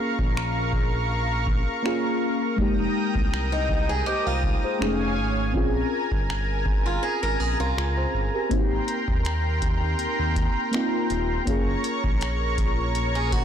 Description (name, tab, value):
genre	contemporary R&B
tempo	81 BPM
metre	4/4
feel	swing 54% on 16ths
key	unclear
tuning	A4 = 440 Hz
part	mellow FM electric piano	accompaniment	0.0-13.4 s	Ab3 to F5	-28 LUFS	left 2 dB	chorus, phaser
part	lush unison pad	sustained chords	0.0-13.4 s	Bb4 to Eb6	-28 LUFS	right 1 dB	chorus, sidechain pumping
part	smooth gliding synth bass	bass	0.2-13.4 s	Eb1 to Eb2	-27 LUFS	equal	none
part	booming analog drum machine	drums	0.2-13.4 s	finger snaps, hi-hat, kick drum	-26 LUFS	equal	soft clipping on snare
part	picked swing-style acoustic guitar	arpeggios	3.5-8.5, 13.2-13.4 s	Eb4 to Bb4	-30 LUFS	equal	ping-pong delay
room	digital ambience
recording	blown-out, overdriven recording, overdrive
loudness	-22 LUFS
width	side -9 dB against mid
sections	0.0-13.4 A section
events	break 0.0-8.5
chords	0.0 Gbmaj7 (rootless); 2.6 Fm11; 4.8 F7alt; 5.5 Bbm9; 8.5 Abmaj9; 11.5 Gbmaj7